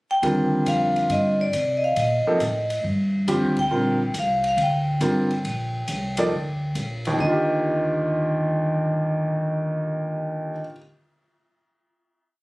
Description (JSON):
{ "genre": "modal jazz", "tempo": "138 BPM", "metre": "4/4", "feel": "swing 68% on 8ths", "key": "Eb major", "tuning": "A4 = 441 Hz", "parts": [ { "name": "vibraphone with medium hard mallets", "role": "melody", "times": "0.1-10.6 s", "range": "D5 to G5", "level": "-24 LUFS", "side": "equal", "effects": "none" }, { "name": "clear baby grand piano", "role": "accompaniment", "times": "0.2-10.8 s", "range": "Eb2 to D5", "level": "-24 LUFS", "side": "equal", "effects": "none" }, { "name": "upright bass", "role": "bass", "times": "0.2-10.6 s", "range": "G1 to C3", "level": "-27 LUFS", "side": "equal", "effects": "none" }, { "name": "compact cocktail drum kit", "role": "drums", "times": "0.2-7.1 s", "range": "hi-hat, kick drum, ride cymbal", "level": "-36 LUFS", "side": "left 1 dB", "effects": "none" } ], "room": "light reverb", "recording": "recorded on a phone in the room, studio ambience, compression", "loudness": "-20 LUFS", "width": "side -22 dB against mid", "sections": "0.0-0.2 pickup bar; 0.2-7.2 A section; 7.2-10.7 final chord", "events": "band accent 3.5", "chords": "0.2 Ebmaj9" }